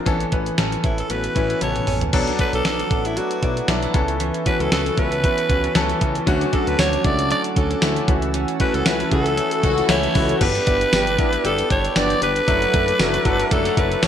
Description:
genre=1980s-style pop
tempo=116 BPM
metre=4/4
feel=swing 55% on 16ths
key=D major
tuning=A4 = 440 Hz
part: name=clear baby grand piano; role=accompaniment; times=0.0-14.1 s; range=D3 to B4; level=-24 LUFS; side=left 4 dB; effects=none
part: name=direct-recorded clean electric guitar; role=riff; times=0.0-14.1 s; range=E3 to G4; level=-30 LUFS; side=right 7 dB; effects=wide subtle chorus
part: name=chorused synth bass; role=bass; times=0.1-14.1 s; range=F#1 to D2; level=-26 LUFS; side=equal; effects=none
part: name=clean 12-bit digital drum machine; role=drums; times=0.1-14.1 s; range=crash cymbal, hi-hat, kick drum, snare drum, tambourine, toms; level=-22 LUFS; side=equal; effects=gated reverb
part: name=raspy alto saxophone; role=melody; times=0.8-14.1 s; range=E4 to D5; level=-22 LUFS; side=equal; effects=digital delay
part: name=warm analog pad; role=sustained chords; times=2.1-14.1 s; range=C#4 to E6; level=-28 LUFS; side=right 2 dB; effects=chorus
part: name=mellow synth brass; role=stabs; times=9.1-14.1 s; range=B3 to A4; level=-29 LUFS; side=equal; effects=chorus, digital delay
part: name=warm studio violin section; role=second line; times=9.6-10.4 s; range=E4 to F#4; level=-30 LUFS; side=left 2 dB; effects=digital delay
room=moderate plate reverb, RT60 1.4 s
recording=bright 1980s-style digital production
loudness=-17 LUFS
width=side -9 dB against mid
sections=0.0-2.1 A section; 2.1-10.4 B section; 10.4-14.1 C section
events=drum fill 1.6-2.1; band accent 8.3-10.4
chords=0.1 Aadd9; 2.1 Bm7; 3.9 Aadd9/C#; 6.3 Dmaj7; 8.1 F#m7/C#; 10.4 G; 12.5 Dadd9/F#

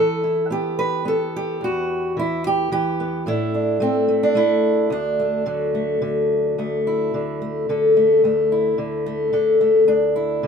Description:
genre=folk, solo fingerstyle acoustic guitar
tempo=109 BPM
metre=3/4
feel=rubato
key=D major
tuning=A4 = 440 Hz
part: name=fingerpicked steel-string acoustic guitar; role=solo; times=0.0-10.5 s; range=D2 to B4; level=-18 LUFS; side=equal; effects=none
room=little or no reverb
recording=minimal, uncompressed stereo recording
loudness=-18 LUFS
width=side -6 dB against mid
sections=0.0-6.6 A section; 6.6-10.5 B section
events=none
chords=0.0 Emadd9; 3.3 Am; 4.9 D; 6.6 Dadd9

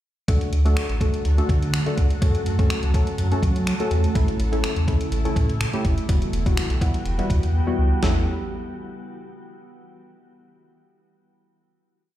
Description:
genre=dance-pop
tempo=124 BPM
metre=4/4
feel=straight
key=A mixolydian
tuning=A4 = 437 Hz
part: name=deep mellow chord stab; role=accompaniment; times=0.3-8.2 s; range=G3 to A4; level=-27 LUFS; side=left 1 dB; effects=chorus, sidechain pumping
part: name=glassy FM pad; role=sustained chords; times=1.0-8.3 s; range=C#3 to A4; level=-31 LUFS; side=right 1 dB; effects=ensemble chorus, built-in reverb, sidechain pumping
part: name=sub bass with octave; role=bass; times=0.3-8.3 s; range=E1 to F#3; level=-22 LUFS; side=equal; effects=sidechain pumping
part: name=crisp 8-bit digital drum machine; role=drums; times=0.3-8.1 s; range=finger snaps, hi-hat, kick drum, snare drum, toms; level=-23 LUFS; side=equal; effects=none
room=light reverb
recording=played on a big sound system in a bare room, stone room reverb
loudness=-19 LUFS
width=side -13 dB against mid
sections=0.3-8.0 bridge; 8.0-10.0 final chord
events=silent gap 7.5-8.0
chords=0.3 D; 2.2 F#m; 4.2 A; 6.1 Emadd9; 8.0 A

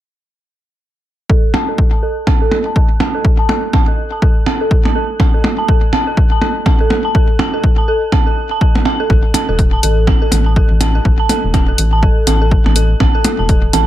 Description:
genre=minimal techno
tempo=123 BPM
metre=4/4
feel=swing 59% on 16ths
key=unclear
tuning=A4 = 440 Hz
part: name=dark detuned synth bell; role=riff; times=1.3-13.8 s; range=A4 to A5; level=-18 LUFS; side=right 1 dB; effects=chorus, phaser, sidechain pumping, low-pass filter, ping-pong delay
part: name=electronic kick drum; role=drums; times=1.3-13.6 s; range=none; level=-12 LUFS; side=equal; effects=none
part: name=percussion blips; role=percussion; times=1.5-13.8 s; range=none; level=-19 LUFS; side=right 2 dB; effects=ping-pong delay
part: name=rubbery square bass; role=bass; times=9.1-13.9 s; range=E1 to A1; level=-14 LUFS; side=equal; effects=sidechain pumping
part: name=electronic hi-hat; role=drums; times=9.3-13.8 s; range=none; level=-19 LUFS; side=left 2 dB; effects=none
room=little or no reverb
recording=none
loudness=-11 LUFS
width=side -13 dB against mid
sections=1.3-13.9 A section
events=filter sweep on synth bell 1.3-13.9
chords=none

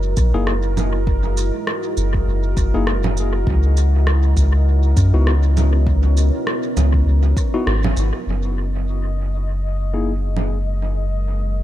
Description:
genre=ambient dub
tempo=100 BPM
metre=4/4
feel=swing 58% on 16ths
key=unclear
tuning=A4 = 444 Hz
part: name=deep dark ambient pad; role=sustained chords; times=0.0-11.6 s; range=G#3 to D#5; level=-27 LUFS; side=equal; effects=chorus, built-in reverb
part: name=soft dub sub bass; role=bass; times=0.0-11.6 s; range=F#1 to F#2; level=-17 LUFS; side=equal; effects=tube saturation
part: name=bubbling stepped-filter texture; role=texture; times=0.0-11.6 s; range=A#4 to D#5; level=-32 LUFS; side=right 4 dB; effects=chorus, built-in reverb
part: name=electronic kick drum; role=drums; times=0.2-7.5 s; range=none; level=-21 LUFS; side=equal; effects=none
part: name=electronic shaker, rim click and congas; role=drums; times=0.2-10.5 s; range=none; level=-26 LUFS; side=right 2 dB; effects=dub echo
part: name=tine electric piano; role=stabs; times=0.3-10.1 s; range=A#3 to G#4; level=-27 LUFS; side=left 4 dB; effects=medium tremolo, low-pass filter, dub echo
room=little or no reverb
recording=echo-heavy mix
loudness=-16 LUFS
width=side -13 dB against mid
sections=0.0-8.3 A section; 8.3-11.6 B section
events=band accent 7.7-8.0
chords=0.0 F#13; 3.5 C#m11; 8.3 F#13

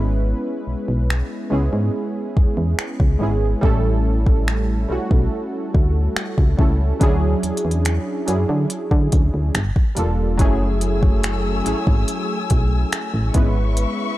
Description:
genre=contemporary R&B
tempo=71 BPM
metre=4/4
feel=straight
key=F# minor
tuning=A4 = 440 Hz
part: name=warm analog keys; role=accompaniment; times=0.0-14.2 s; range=E3 to B4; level=-23 LUFS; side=right 1 dB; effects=chorus
part: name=solid FM bass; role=bass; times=0.0-13.9 s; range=E1 to D3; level=-20 LUFS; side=equal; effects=none
part: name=smooth R&B drum kit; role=drums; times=1.1-14.0 s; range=finger snaps, hi-hat, kick drum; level=-18 LUFS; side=equal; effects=none
part: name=warm studio string section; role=sustained chords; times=10.4-14.2 s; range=A3 to E6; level=-28 LUFS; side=left 4 dB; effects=sidechain pumping
room=digital ambience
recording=dry, gritty hardware recording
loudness=-17 LUFS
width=side -16 dB against mid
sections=0.0-14.2 A section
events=none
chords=0.0 C#m7/G#; 3.6 A7; 7.0 Dmaj9#11; 9.5 Gm9; 10.4 F#m9; 13.3 C#m7/G#

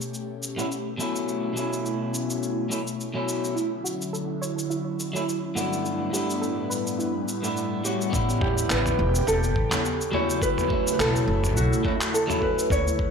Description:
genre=sunset chillout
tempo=105 BPM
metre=4/4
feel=swing 55% on 16ths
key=unclear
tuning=A4 = 441 Hz
part: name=airy breathy pad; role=sustained chords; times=0.0-13.1 s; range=A2 to G4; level=-31 LUFS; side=equal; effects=chorus, phaser
part: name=dusty soul sampler-style drum kit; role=drums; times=0.0-13.0 s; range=cabasa, handclaps, toms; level=-31 LUFS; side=equal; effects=none
part: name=electric guitar at the edge of break-up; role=accompaniment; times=0.6-12.7 s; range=G2 to F#4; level=-28 LUFS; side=equal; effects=auto-pan, tape echo
part: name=soft round pluck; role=arpeggios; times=3.6-8.0 s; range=E4 to C#5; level=-34 LUFS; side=right 1 dB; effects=analog chorus, tape echo
part: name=upright bass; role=bass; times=8.1-13.1 s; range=E1 to D2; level=-25 LUFS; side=equal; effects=none
part: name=electronic kick drum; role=drums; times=8.1-13.1 s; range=none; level=-29 LUFS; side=equal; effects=none
part: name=nylon-string guitar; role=melody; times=8.4-13.1 s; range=F#4 to C#5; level=-26 LUFS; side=equal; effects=ping-pong delay
room=moderate plate reverb, RT60 1.5 s, digital ambience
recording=dreamy mix soaked in reverb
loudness=-23 LUFS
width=side -6 dB against mid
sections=0.0-8.1 A section; 8.1-13.1 B section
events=filter sweep on analog synth pad 0.0-8.1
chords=0.0 A9; 1.3 B9sus4; 3.6 G69; 8.1 A9; 10.4 B9sus4

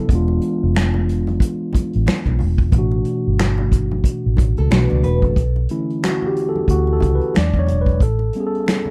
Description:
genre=R&B, neo-soul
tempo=91 BPM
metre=4/4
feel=swing 58% on 16ths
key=B minor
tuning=A4 = 440 Hz
part: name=mellow tine electric piano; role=accompaniment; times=0.0-8.9 s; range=B2 to D5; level=-23 LUFS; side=equal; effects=none
part: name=vintage muted fingered electric bass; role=bass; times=0.1-8.3 s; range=E1 to E2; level=-20 LUFS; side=equal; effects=none
part: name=unplugged drum kit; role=drums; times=0.1-8.8 s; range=finger snaps, hi-hat, kick drum, snare drum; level=-20 LUFS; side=equal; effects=none
part: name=congas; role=percussion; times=0.3-8.9 s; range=none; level=-34 LUFS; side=equal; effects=none
part: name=nylon-string guitar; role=second line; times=4.6-5.5 s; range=A4 to D5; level=-28 LUFS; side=equal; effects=none
room=little or no reverb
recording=none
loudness=-18 LUFS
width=mono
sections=0.0-5.4 A section; 5.4-8.9 B section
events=tine electric piano solo 5.4-8.9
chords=0.1 E7b9; 2.7 A9sus4; 4.7 Bm9; 5.4 Bm11; 7.3 E7; 8.0 A9

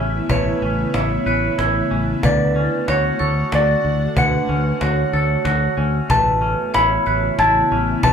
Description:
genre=post-rock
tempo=93 BPM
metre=3/4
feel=straight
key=A major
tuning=A4 = 440 Hz
part: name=clean lap steel guitar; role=melody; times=0.0-8.1 s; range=C#5 to B5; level=-20 LUFS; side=left 2 dB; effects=none
part: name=ethereal airy pad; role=sustained chords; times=0.0-8.1 s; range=C#3 to F#4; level=-25 LUFS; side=left 1 dB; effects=ensemble chorus, built-in reverb
part: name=twangy electric guitar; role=arpeggios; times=0.0-8.1 s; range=D3 to B4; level=-24 LUFS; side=left 1 dB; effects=none
part: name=fingered electric bass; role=bass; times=0.0-8.1 s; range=A1 to D2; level=-22 LUFS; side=equal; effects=none
part: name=vibraphone with hard mallets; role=arpeggios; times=0.3-8.1 s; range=B4 to C#6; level=-26 LUFS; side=right 9 dB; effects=none
part: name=cajon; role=drums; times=0.3-8.1 s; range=none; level=-24 LUFS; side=left 1 dB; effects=none
room=wet small room reverb, RT60 0.5 s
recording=band playing live in one room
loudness=-16 LUFS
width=side -7 dB against mid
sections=0.0-8.1 A section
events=none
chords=0.0 Aadd9; 2.2 Dmaj7; 6.1 Aadd9

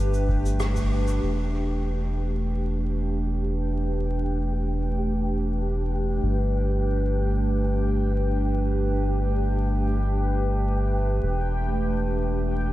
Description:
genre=ambient dub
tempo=free time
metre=none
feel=none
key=E minor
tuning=A4 = 440 Hz
part: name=warbly tape-like pad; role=sustained chords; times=0.0-12.7 s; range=A3 to B4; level=-28 LUFS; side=right 1 dB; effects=chorus, built-in reverb, phaser
part: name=soft dub sub bass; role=bass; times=0.0-12.7 s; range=E1 to G1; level=-25 LUFS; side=equal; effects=tube saturation
part: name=bubbling stepped-filter texture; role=texture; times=0.0-12.7 s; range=G4 to G5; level=-36 LUFS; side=left 1 dB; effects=chorus, built-in reverb
part: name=cabasa and rim click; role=drums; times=0.1-1.2 s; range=none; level=-38 LUFS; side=left 1 dB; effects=dub echo
part: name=electronic kick drum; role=drums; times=0.3-0.9 s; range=none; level=-30 LUFS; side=equal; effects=none
room=moderate huge ambient reverb, RT60 7.1 s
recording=dreamy mix soaked in reverb, vinyl crackle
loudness=-23 LUFS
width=side -15 dB against mid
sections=0.0-1.2 A section; 1.2-12.7 B section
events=band accent 0.6-0.9; filter sweep on ambient pad 1.2-12.7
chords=0.0 Gadd9; 1.2 Em7; 6.2 Gadd9; 11.2 Em7

